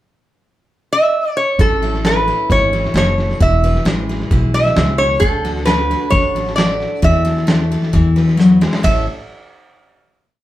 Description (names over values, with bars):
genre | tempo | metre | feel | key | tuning
honky-tonk and classic country | 132 BPM | 4/4 | straight | A major | A4 = 435 Hz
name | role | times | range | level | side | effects
lap resonator guitar | melody | 0.9-9.0 s | A4 to E5 | -16 LUFS | equal | none
picked steel-string acoustic guitar | accompaniment | 1.6-9.1 s | A2 to C#5 | -18 LUFS | left 2 dB | none
upright bass | bass | 1.6-9.1 s | E1 to E2 | -19 LUFS | equal | none
trip hop sampler-style drum kit | drums | 1.6-8.9 s | hi-hat, kick drum, ride cymbal, snare drum | -18 LUFS | equal | none
room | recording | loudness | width
wet studio reverb, RT60 0.7 s | heard from further back in the room | -12 LUFS | side -14 dB against mid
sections
0.0-1.6 pickup bar; 1.6-8.8 interlude; 8.8-10.4 final chord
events
drum fill 8.4-8.8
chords
0.0 N.C.; 1.6 A; 3.4 E; 5.2 D; 7.0 Esus4; 7.9 E; 8.8 A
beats
0.23 0.69 1.14 | 1.59 2.04 2.50 2.95 | 3.40 3.85 4.31 4.76 | 5.21 5.67 6.12 6.57 | 7.03 7.48 7.93 8.39 | 8.84